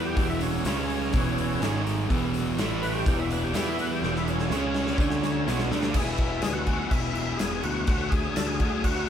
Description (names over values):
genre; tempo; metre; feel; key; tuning
classic rock; 124 BPM; 4/4; straight; E mixolydian; A4 = 439 Hz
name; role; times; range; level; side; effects
overdriven tonewheel organ; melody; 0.0-9.1 s; C#4 to B4; -32 LUFS; equal; slow rotary speaker, chorus vibrato
bright tonewheel organ; sustained chords; 0.0-9.1 s; D3 to E5; -41 LUFS; left 1 dB; none
overdriven electric guitar; riff; 0.0-9.1 s; E2 to G#4; -31 LUFS; left 5 dB; none
sludgy distorted guitar; riff; 0.0-6.0 s; E2 to E4; -29 LUFS; right 6 dB; overdrive
growling picked electric bass; bass; 0.0-9.0 s; E1 to E2; -33 LUFS; equal; overdrive
huge arena drum kit; drums; 0.2-9.0 s; crash cymbal, hi-hat, kick drum, snare drum; -28 LUFS; equal; none
tambourine; percussion; 0.2-8.5 s; none; -46 LUFS; left 7 dB; none
room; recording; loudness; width
moderate small room reverb, RT60 0.5 s; band playing live in one room; -24 LUFS; side -9 dB against mid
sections
0.0-6.0 A section; 6.0-9.1 B section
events
tonewheel organ solo 0.0-6.0; drum fill 4.0-6.0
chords
0.0 E; 0.7 C#5; 1.1 E; 1.6 G#5; 2.1 E; 2.6 A5; 3.1 E; 4.5 C#5; 5.0 D5; 5.5 E; 7.9 D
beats
| 0.17 0.65 1.14 1.62 | 2.10 2.58 3.06 3.55 | 4.03 4.51 4.99 5.48 | 5.96 6.44 6.92 7.41 | 7.89 8.37 8.85